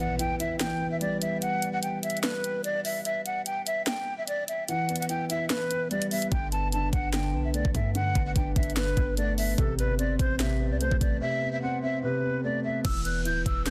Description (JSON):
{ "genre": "hip hop, trap", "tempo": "147 BPM", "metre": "4/4", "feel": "half-time", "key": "E minor", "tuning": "A4 = 440 Hz", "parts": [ { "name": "breathy hollow jazz flute", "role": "melody", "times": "0.0-13.7 s", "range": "A4 to G6", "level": "-33 LUFS", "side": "equal", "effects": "low-pass filter, digital delay" }, { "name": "dark concert grand piano", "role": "accompaniment", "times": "0.0-13.7 s", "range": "C3 to E4", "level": "-34 LUFS", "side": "equal", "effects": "low-pass filter" }, { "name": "impact and downlifter", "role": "sound effects", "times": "0.0-1.4, 12.9-13.7 s", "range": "none", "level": "-41 LUFS", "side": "equal", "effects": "none" }, { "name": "trap drum kit", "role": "drums", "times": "0.2-13.7 s", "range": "crash cymbal, hi-hat, kick drum, snare drum", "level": "-32 LUFS", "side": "equal", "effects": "none" }, { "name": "warm 808-style bass", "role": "bass", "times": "6.3-13.7 s", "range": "D1 to G2", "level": "-32 LUFS", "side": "equal", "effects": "none" } ], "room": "light reverb, digital ambience", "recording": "dense, heavily limited modern master", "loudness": "-28 LUFS", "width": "mono", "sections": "0.0-12.8 A section", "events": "break 0.0-6.3, 11.2-12.8; impact 0.0-1.4", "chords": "0.0 Em; 6.3 Gadd9; 9.6 Amadd9; 12.8 E5", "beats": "0.19 0.60 1.01 | 1.42 1.83 2.23 2.64 | 3.05 3.46 3.87 4.28 | 4.68 5.09 5.50 5.91 | 6.32 6.72 7.13 7.54 | 7.95 8.36 8.77 9.17 | 9.58 9.99 10.40 10.81 | 11.21 11.62 12.03 12.44 | 12.85 13.26 13.66" }